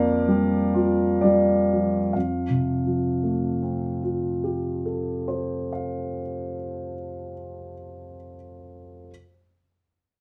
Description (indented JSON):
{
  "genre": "classical, impressionist solo piano",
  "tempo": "19-26 BPM (dotted quarters)",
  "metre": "6/8",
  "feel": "rubato",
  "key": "F major",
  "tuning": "A4 = 445 Hz",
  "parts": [
    { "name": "warm concert grand piano", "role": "solo", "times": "0.0-9.1 s", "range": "F2 to F5", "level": "-25 LUFS", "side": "equal", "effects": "none" }
  ],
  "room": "moderate studio reverb, RT60 0.7 s",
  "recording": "none",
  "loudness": "-24 LUFS",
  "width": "mono",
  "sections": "0.0-2.1 A section; 2.1-6.9 B section",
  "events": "slowing down 0.0-2.1",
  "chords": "0.0 Gm7/F; 2.1 Fadd9",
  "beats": "| 2.14 4.58"
}